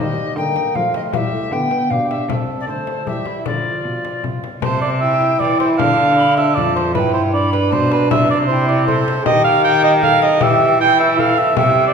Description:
classical, renaissance-style consort dance; 156 BPM; 3/4; straight; A4 = 439 Hz
alto recorder; melody; 0.0-11.9 s; C5 to B5; -23 LUFS; left 3 dB
warm cor anglais; second line; 0.0-11.9 s; Eb4 to G5; -17 LUFS; right 3 dB
warm trombone; accompaniment; 0.0-11.9 s; F3 to A4; -21 LUFS; left 1 dB
rich cello; bass; 0.0-11.9 s; F2 to F3; -21 LUFS; right 1 dB
frame drum; percussion; 0.6-11.7 s; -25 LUFS; left 6 dB
wet recital hall reverb, RT60 1.6 s; recorded in a church or concert hall; -14 LUFS; side -6 dB against mid
0.0-4.6 A section; 4.6-11.9 A section
0.0 Eb; 1.1 Em; 2.3 C; 3.5 Dm; 4.6 C; 5.8 Dm; 7.0 G; 8.1 C; 9.3 Eb; 10.4 Em

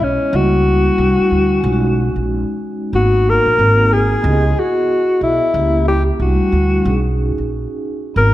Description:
hip hop, jazz-hop; 92 BPM; 4/4; swing 61% on 16ths; A4 = 440 Hz
breathy alto saxophone; melody; 0.0-8.3 s; C#4 to A#4; -16 LUFS; left 2 dB
vibraphone with soft mallets; accompaniment; 0.0-8.3 s; G3 to D#5; -19 LUFS; right 1 dB
upright bass; bass; 0.0-8.3 s; G#1 to D2; -17 LUFS; equal
moderate recital hall reverb, RT60 1.6 s; dark, warm production; -13 LUFS; side -14 dB against mid
0.0-8.3 A section
0.3 F#7b9/C#; 1.0 C69; 1.6 B69; 2.9 G#m9; 3.6 G#7; 4.2 C#m7; 5.5 C#dim7; 6.2 C69; 6.8 B69

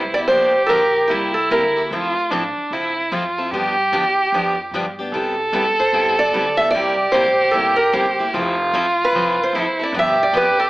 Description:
acoustic string swing (jazz manouche); 150 BPM; 4/4; swing 63% on 8ths; C major; A4 = 440 Hz
picked steel-string acoustic guitar; melody; 0.0-1.8, 5.8-10.6 s; G4 to E5; -17 LUFS; equal; plate reverb
warm violin; second line; 0.0-10.7 s; D4 to A4; -19 LUFS; right 1 dB
upright bass; bass; 0.0-10.7 s; F1 to G2; -35 LUFS; equal
picked steel-string acoustic guitar; accompaniment; 0.2-10.5 s; C3 to A4; -26 LUFS; left 2 dB
picked steel-string acoustic guitar; accompaniment; 0.3-10.4 s; C3 to A4; -30 LUFS; right 2 dB
wet studio reverb, RT60 0.8 s; AM radio sound; -16 LUFS; side -19 dB against mid
0.0-10.7 A section
0.3 Gm7; 1.1 C7; 1.9 Fmaj7; 3.5 G7; 5.1 Cmaj7; 6.7 C7; 8.3 Fmaj7; 9.9 G7

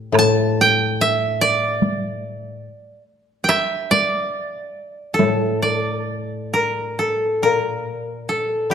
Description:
japanese traditional, Japanese chamber music; 70 BPM; 4/4; rubato; A in sen; A4 = 441 Hz
koto; accompaniment; 0.0-8.7 s; A2 to G3; -22 LUFS; left 3 dB
koto; melody; 0.2-8.7 s; G4 to A5; -19 LUFS; right 1 dB
taiko ensemble; percussion; 0.2-5.4 s; -23 LUFS; right 1 dB
moderate recital hall reverb, RT60 1.4 s; -17 LUFS; side -7 dB against mid
0.0-7.0 A section; 7.0-8.7 B section

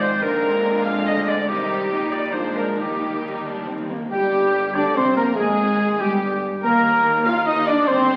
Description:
classical, dramatic, fast romantic movement for symphony orchestra; 143 BPM; 3/4; rubato; Eb major; A4 = 440 Hz
warm symphonic violin section; melody; 0.0-8.2 s; G4 to F5; -32 LUFS; equal
bright clarinet; second line; 0.0-8.2 s; G4 to F5; -28 LUFS; equal
rich symphonic violin section; second line; 0.0-8.2 s; Bb3 to F5; -33 LUFS; equal
rich symphonic viola section; accompaniment; 0.0-8.2 s; D3 to F4; -33 LUFS; equal
dark French horn section; sustained chords; 0.0-8.2 s; G3 to F4; -25 LUFS; equal
rich studio cello section; bass; 0.0-8.2 s; Eb2 to D3; -34 LUFS; equal
rich symphonic double bass section; bass; 0.0-8.2 s; G1 to Eb2; -39 LUFS; equal
timpani; percussion; 2.8-4.1 s; Eb3; -38 LUFS; equal
concert flute; second line; 4.1-8.2 s; G5 to F6; -26 LUFS; equal
warm oboe; second line; 4.1-8.2 s; G4 to F5; -27 LUFS; equal
mellow tuba; bass; 4.1-8.2 s; G1 to Eb2; -36 LUFS; equal
wet scoring stage reverb, RT60 1.5 s; very old 78 rpm record, vinyl crackle; -20 LUFS; mono
0.0-4.1 A section; 4.1-8.2 A section
timpani fill 2.8-4.1
0.2 Bb9; 1.5 Cm; 1.9 Eb/Bb; 2.3 Bb7; 2.8 Eb; 4.1 Gmadd11; 5.4 N.C.; 6.6 Eb5

